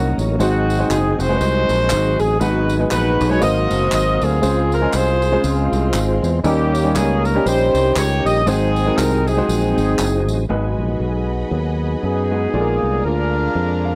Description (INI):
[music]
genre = uptempo gospel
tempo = 119 BPM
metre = 4/4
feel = swing 57% on 8ths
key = unclear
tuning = A4 = 440 Hz
[part]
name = warm horn section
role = melody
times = 0.0-14.0 s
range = Ab3 to Eb5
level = -22 LUFS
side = equal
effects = none
[part]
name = tonewheel organ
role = sustained chords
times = 0.0-14.0 s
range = Gb3 to F5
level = -27 LUFS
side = equal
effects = slow rotary speaker, chorus vibrato
[part]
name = fingered electric bass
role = bass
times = 0.0-14.0 s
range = F1 to Gb2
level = -22 LUFS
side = equal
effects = none
[part]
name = tambourine and handclaps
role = percussion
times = 0.2-10.4 s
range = none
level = -32 LUFS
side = equal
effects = none
[part]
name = clear grand piano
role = accompaniment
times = 0.4-14.0 s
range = Ab2 to F5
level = -25 LUFS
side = equal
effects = none
[part]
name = dark studio string section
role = sustained chords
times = 10.5-14.0 s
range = D5 to Cb6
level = -35 LUFS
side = equal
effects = none
[sound]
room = small room ambience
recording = dry, close 1970s-style studio recording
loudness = -18 LUFS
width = mono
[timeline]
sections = 0.0-10.5 A section; 10.5-14.0 B section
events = grand piano fill 13.6-14.0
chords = 0.4 Ab7; 2.4 Abm7; 3.4 Ab13; 4.4 Dbmaj7; 6.4 Eb7; 8.5 Ab7; 10.5 Abm7; 12.5 Bb7